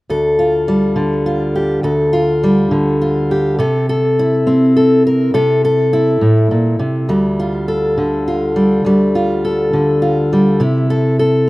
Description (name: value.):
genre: folk.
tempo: 69 BPM (dotted quarters).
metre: 6/8.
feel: straight.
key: D minor.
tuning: A4 = 440 Hz.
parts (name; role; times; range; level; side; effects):
fingerpicked steel-string acoustic guitar; solo; 0.1-11.5 s; D2 to Bb4; -12 LUFS; equal; none.
room: small room ambience.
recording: rough home demo mix.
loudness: -12 LUFS.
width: side -19 dB against mid.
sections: 0.1-7.1 A section; 7.1-11.5 B section.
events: none.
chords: 0.1 Dm; 3.6 Am/C; 7.1 Dm; 10.6 Am/C.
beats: | 0.09 0.97 | 1.84 2.72 | 3.59 4.47 | 5.34 6.22 | 7.09 7.97 | 8.84 9.72 | 10.59 11.47.